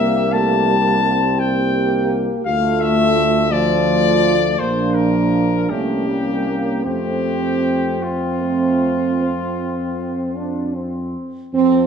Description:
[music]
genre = classical, hymn-like piece for brass band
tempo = 50-58 BPM (dotted quarters)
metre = 12/8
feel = rubato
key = F major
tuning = A4 = 441 Hz
[part]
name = warm cornet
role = melody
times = 0.0-11.9 s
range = F4 to A5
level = -21 LUFS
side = left 7 dB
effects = none
[part]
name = mellow French horn section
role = second line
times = 0.0-11.9 s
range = C4 to G4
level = -21 LUFS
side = right 5 dB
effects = none
[part]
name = clear euphonium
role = accompaniment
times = 0.0-11.9 s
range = F3 to C4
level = -24 LUFS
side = right 2 dB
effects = none
[part]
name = mellow trombone section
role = accompaniment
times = 0.0-11.5 s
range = A3 to D4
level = -25 LUFS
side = left 1 dB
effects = none
[part]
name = mellow tuba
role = bass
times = 0.0-11.9 s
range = Bb1 to F2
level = -23 LUFS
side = right 1 dB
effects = none
[sound]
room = moderate recital hall reverb, RT60 1.5 s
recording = minimal, uncompressed stereo recording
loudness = -16 LUFS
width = side -7 dB against mid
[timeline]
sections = 0.0-11.5 A section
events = none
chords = 0.0 C7(no3); 2.5 Dm; 4.6 Bb; 5.7 C5; 6.9 F

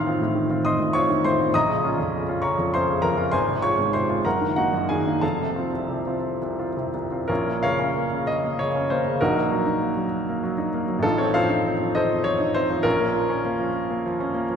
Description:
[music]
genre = classical, romantic character piece for solo piano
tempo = 55-68 BPM (dotted quarters)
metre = 6/8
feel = rubato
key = Bb minor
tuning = A4 = 440 Hz
[part]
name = clear baby grand piano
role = solo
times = 0.0-14.6 s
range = F1 to F6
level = -21 LUFS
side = equal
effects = none
[sound]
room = wet concert hall reverb, RT60 2.1 s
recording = minimal, uncompressed stereo recording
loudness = -21 LUFS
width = side -7 dB against mid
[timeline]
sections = 0.0-7.3 A section; 7.3-14.6 B section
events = none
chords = 0.0 F7/A; 1.5 Bbm; 3.3 Fm/Ab; 4.2 Ebm/Gb; 5.2 F; 7.3 Bbm; 9.2 Ebm/Bb; 11.0 F7/A; 12.9 Bbm

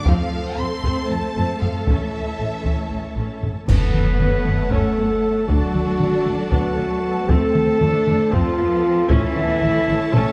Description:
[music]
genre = cinematic, epic orchestral film score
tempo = 232 BPM (eighths)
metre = 7/8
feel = straight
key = F# minor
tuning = A4 = 439 Hz
[part]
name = warm symphonic violin section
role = melody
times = 0.0-10.3 s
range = E5 to C6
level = -37 LUFS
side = equal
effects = none
[part]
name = warm studio violin section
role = second line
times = 0.0-10.3 s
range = A3 to C6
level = -34 LUFS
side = equal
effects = none
[part]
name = dark symphonic viola section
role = accompaniment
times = 0.0-10.3 s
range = A3 to A4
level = -32 LUFS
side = equal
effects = none
[part]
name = dark French horn section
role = sustained chords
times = 0.0-10.3 s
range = A3 to B4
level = -26 LUFS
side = equal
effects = none
[part]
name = dark symphonic string section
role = sustained chords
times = 0.0-10.3 s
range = A3 to A5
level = -33 LUFS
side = equal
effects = none
[part]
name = dark symphonic cello section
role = bass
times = 0.0-10.3 s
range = E3 to C4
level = -29 LUFS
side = equal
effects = none
[part]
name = warm studio double bass section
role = bass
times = 0.1-10.2 s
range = A1 to F#2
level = -29 LUFS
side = equal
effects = none
[part]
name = taiko ensemble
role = drums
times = 0.1-10.3 s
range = none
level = -25 LUFS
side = equal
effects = none
[part]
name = warm trumpet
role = stabs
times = 3.7-10.3 s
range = E4 to B4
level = -30 LUFS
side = equal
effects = none
[part]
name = clash cymbals and concert bass drum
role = percussion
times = 3.7-4.7 s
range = none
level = -26 LUFS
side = equal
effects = none
[part]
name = timpani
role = percussion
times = 3.7-4.4 s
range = F#2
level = -30 LUFS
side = equal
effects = none
[sound]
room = moderate scoring stage reverb, RT60 2.0 s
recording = dark, warm production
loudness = -20 LUFS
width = mono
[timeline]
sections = 0.0-3.7 A section; 3.7-10.3 B section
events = band accent 3.7-4.2; drum fill 10.1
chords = 0.1 F; 1.9 A; 3.7 F#m; 5.5 D; 7.3 F; 9.1 A

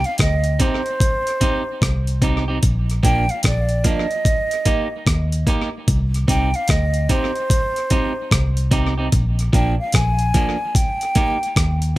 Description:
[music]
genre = roots reggae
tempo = 74 BPM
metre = 4/4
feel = swing 64% on 16ths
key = C minor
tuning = A4 = 441 Hz
[part]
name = concert flute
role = melody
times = 0.0-12.0 s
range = C5 to Ab5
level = -23 LUFS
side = right 1 dB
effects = tape echo
[part]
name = vintage muted fingered electric bass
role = bass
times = 0.0-11.9 s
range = Bb1 to Eb2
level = -19 LUFS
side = equal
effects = none
[part]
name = breakbeat sampler-style drum kit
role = drums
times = 0.0-12.0 s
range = hi-hat, kick drum, rim click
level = -19 LUFS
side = equal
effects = overdrive
[part]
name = electric guitar at the edge of break-up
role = accompaniment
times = 0.6-11.4 s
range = F3 to G4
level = -25 LUFS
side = right 3 dB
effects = warbly pitch drift, tape echo
[sound]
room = little or no reverb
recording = none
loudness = -16 LUFS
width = side -17 dB against mid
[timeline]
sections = 0.0-12.0 A section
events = none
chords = 0.0 Cm; 2.6 Bb; 4.3 Eb; 5.9 Cm; 9.1 Bb; 10.8 Eb

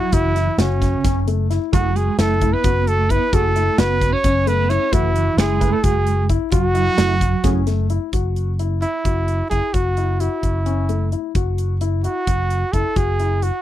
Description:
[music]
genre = progressive instrumental, band music in an uneven meter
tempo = 262 BPM (eighths)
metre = 7/8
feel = straight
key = F# minor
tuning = A4 = 436 Hz
[part]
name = warm trumpet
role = melody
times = 0.0-13.6 s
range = C#4 to C#5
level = -21 LUFS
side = right 2 dB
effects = none
[part]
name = mellow electric guitar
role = second line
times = 0.0-7.6 s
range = C#3 to C#4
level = -26 LUFS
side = right 8 dB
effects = tremolo
[part]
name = dark concert grand piano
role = arpeggios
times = 0.0-13.6 s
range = A3 to F#4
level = -25 LUFS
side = left 16 dB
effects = none
[part]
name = picked electric bass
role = bass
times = 0.1-13.5 s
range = F#1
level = -20 LUFS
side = equal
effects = none
[part]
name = big rock drum kit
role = drums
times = 0.1-13.5 s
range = hi-hat, kick drum, snare drum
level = -22 LUFS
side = equal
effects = none
[part]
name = barky tine electric piano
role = accompaniment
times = 1.7-7.6 s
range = A3 to B4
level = -26 LUFS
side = right 16 dB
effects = overdrive, ensemble chorus
[sound]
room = little or no reverb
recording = dry, close 1970s-style studio recording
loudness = -16 LUFS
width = side -12 dB against mid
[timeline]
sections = 0.0-8.1 A section; 8.1-13.6 B section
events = none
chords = 0.0 F#m7; 8.1 F#7(no3)

